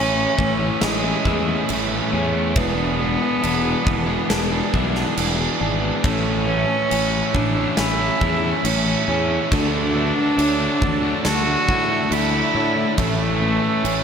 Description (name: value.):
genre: post-rock.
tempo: 69 BPM.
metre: 4/4.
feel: straight.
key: A major.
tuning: A4 = 440 Hz.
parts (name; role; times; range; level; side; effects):
rich cello; melody; 0.0-14.0 s; G#3 to F#4; -23 LUFS; right 1 dB; digital delay.
clean electric guitar; arpeggios; 0.0-14.0 s; E2 to E4; -31 LUFS; left 5 dB; digital delay.
vibraphone with medium mallets; arpeggios; 0.0-14.0 s; A4 to D5; -32 LUFS; right 5 dB; digital delay.
overdriven electric guitar; riff; 0.0-14.0 s; A2 to A4; -26 LUFS; right 12 dB; none.
thick fuzz guitar; riff; 0.0-14.0 s; A2 to F#4; -26 LUFS; left 12 dB; distortion.
fuzz fingered electric bass; bass; 0.0-14.0 s; E1 to A2; -25 LUFS; equal; overdrive.
huge arena drum kit; drums; 0.4-14.0 s; crash cymbal, kick drum, snare drum; -25 LUFS; right 1 dB; none.
room: little or no reverb.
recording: none.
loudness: -17 LUFS.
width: side -7 dB against mid.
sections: 0.0-14.0 A section.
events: none.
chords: 0.0 Amaj7; 2.6 E5; 6.0 A; 9.5 Dadd9; 13.0 A.